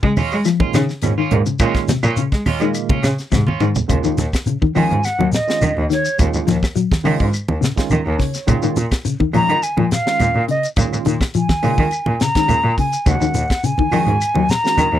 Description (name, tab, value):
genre	afrobeat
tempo	105 BPM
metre	4/4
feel	straight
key	Eb minor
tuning	A4 = 436 Hz
part	electric guitar at the edge of break-up	arpeggios	0.0-14.5 s	C3 to Gb3	-20 LUFS	left 7 dB	none
part	bright cello	bass	0.0-15.0 s	Eb2 to Ab3	-20 LUFS	equal	none
part	tight funk drum kit	drums	0.0-14.9 s	hi-hat, kick drum, snare drum, toms	-20 LUFS	equal	none
part	electric guitar at the edge of break-up	stabs	0.2-3.6 s	Ab3 to F4	-24 LUFS	right 7 dB	lush chorus
part	claves	percussion	0.2-14.9 s	none	-36 LUFS	left 5 dB	none
part	congas	percussion	0.2-14.9 s	none	-22 LUFS	right 3 dB	none
part	shekere	percussion	0.2-14.9 s	none	-25 LUFS	left 2 dB	none
part	barky tine electric piano	accompaniment	0.4-14.9 s	Bb2 to Bb5	-25 LUFS	right 10 dB	overdrive, wide subtle chorus
part	mellow silver concert flute	melody	4.8-15.0 s	Db5 to Bb5	-19 LUFS	equal	none
room	little or no reverb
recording	dry, close 1970s-style studio recording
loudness	-15 LUFS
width	side -11 dB against mid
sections	0.0-3.9 A section; 3.9-15.0 B section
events	drum fill 3.3-3.9; flute solo 3.9-15.0; tine electric piano fill 7.6-8.5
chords	0.0 Bbm7; 3.9 Eb7(no3); 8.5 Bbm7; 13.1 Ebm7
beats	0.45 1.03 | 1.60 2.17 2.75 3.32 | 3.90 4.47 5.04 5.62 | 6.19 6.76 7.34 7.91 | 8.48 9.06 9.63 10.20 | 10.78 11.35 11.92 12.49 | 13.06 13.64 14.21 14.78